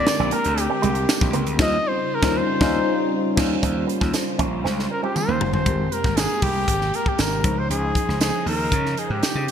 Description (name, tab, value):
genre	polished 1980s jazz-funk pop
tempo	118 BPM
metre	4/4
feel	straight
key	unclear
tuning	A4 = 440 Hz
part	clear flugelhorn	melody	0.0-9.5 s	G4 to Eb5	-24 LUFS	equal	digital delay
part	mellow tine electric piano	accompaniment	0.0-9.5 s	F3 to C5	-26 LUFS	left 3 dB	lush chorus
part	phased string machine	sustained chords	0.0-9.5 s	C3 to C5	-31 LUFS	right 1 dB	ensemble chorus, phaser
part	electric guitar with an envelope filter	riff	0.0-5.5 s	Ab3 to Db4	-28 LUFS	right 8 dB	ensemble chorus
part	gritty slap bass	bass	0.0-9.5 s	Gb1 to Db3	-25 LUFS	equal	overdrive
part	crisp fusion drum kit	drums	0.1-9.5 s	crash cymbal, hi-hat, kick drum, snare drum, toms	-24 LUFS	equal	gated reverb
part	tambourine	percussion	0.1-9.3 s	none	-33 LUFS	right 9 dB	none
room	light reverb, small room ambience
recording	bright 1980s-style digital production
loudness	-19 LUFS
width	side -8 dB against mid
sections	0.0-3.6 A section; 3.6-5.7 B section; 5.7-9.5 C section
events	band accent 1.6-3.6; drum fill 4.6-5.7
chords	0.0 Bb13; 1.6 Eb13; 5.7 Abmaj9; 7.4 Dbmaj9